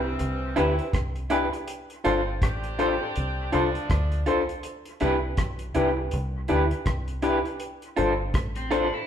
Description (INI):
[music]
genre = lovers rock reggae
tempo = 81 BPM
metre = 4/4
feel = swing 60% on 16ths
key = C major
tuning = A4 = 440 Hz
[part]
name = edgy saxophone section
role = second line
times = 0.0-4.2 s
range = E3 to G4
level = -33 LUFS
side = equal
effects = none
[part]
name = tine electric piano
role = accompaniment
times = 0.0-9.0 s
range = D4 to C5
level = -28 LUFS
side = left 4 dB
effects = none
[part]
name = electric guitar through a small old amp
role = stabs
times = 0.0-9.0 s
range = E4 to C5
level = -28 LUFS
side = right 2 dB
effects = tremolo
[part]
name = deep dub fingered electric bass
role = bass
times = 0.0-8.9 s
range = G1 to D2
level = -29 LUFS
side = equal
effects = none
[part]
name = cloth-damped thuddy drum kit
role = drums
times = 0.2-8.9 s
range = hi-hat, kick drum, rim click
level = -29 LUFS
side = equal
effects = dub echo
[part]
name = electric guitar through a small old amp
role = arpeggios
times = 8.6-9.1 s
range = C4 to E4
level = -32 LUFS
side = equal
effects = none
[sound]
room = wet large studio reverb, RT60 1.4 s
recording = band playing live in one room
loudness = -23 LUFS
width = side -9 dB against mid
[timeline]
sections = 0.0-9.1 A section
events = none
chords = 0.0 Cmaj7; 1.7 G9sus4; 4.6 Cmaj7; 7.6 G9sus4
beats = 0.19 0.94 | 1.68 2.42 3.16 3.90 | 4.64 5.38 6.12 6.86 | 7.60 8.34